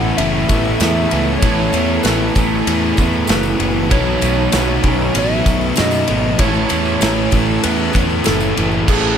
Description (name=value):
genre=rock, shoegaze and dream pop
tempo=97 BPM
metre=4/4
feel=straight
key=A lydian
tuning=A4 = 439 Hz
part: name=soft struck synth lead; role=melody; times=0.0-9.2 s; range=G#4 to F#5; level=-23 LUFS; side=equal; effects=chorus, digital delay
part: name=soft additive organ-like pad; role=sustained chords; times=0.0-9.2 s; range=A4 to E6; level=-29 LUFS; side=right 1 dB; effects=ensemble chorus, built-in reverb
part: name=electric guitar through a small old amp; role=arpeggios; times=0.0-9.2 s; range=E3 to F#4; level=-27 LUFS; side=right 4 dB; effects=none
part: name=overdriven electric guitar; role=riff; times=0.0-9.2 s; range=A2 to A4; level=-22 LUFS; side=right 11 dB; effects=reverse reverb
part: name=overdriven electric guitar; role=riff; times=0.0-9.2 s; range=A2 to B3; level=-22 LUFS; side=equal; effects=none
part: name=thick fuzz guitar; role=riff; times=0.0-9.2 s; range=A2 to B3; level=-21 LUFS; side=left 10 dB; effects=distortion, analog chorus
part: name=fuzz picked electric bass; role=bass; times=0.0-9.2 s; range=F#1 to F#2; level=-20 LUFS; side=equal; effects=overdrive
part: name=loose indie drum kit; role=drums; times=0.2-9.0 s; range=crash cymbal, kick drum, ride cymbal, snare drum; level=-19 LUFS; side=equal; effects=none
part: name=tambourine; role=percussion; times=0.5-8.8 s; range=none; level=-33 LUFS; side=right 10 dB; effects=none
room=small room ambience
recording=none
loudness=-13 LUFS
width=side -8 dB against mid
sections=0.0-8.9 A section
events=none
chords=0.0 Amaj9; 3.9 B9sus4; 6.4 Amaj7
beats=0.19 0.81 | 1.43 2.05 2.67 3.29 | 3.91 4.53 5.16 5.78 | 6.40 7.02 7.64 8.26 | 8.88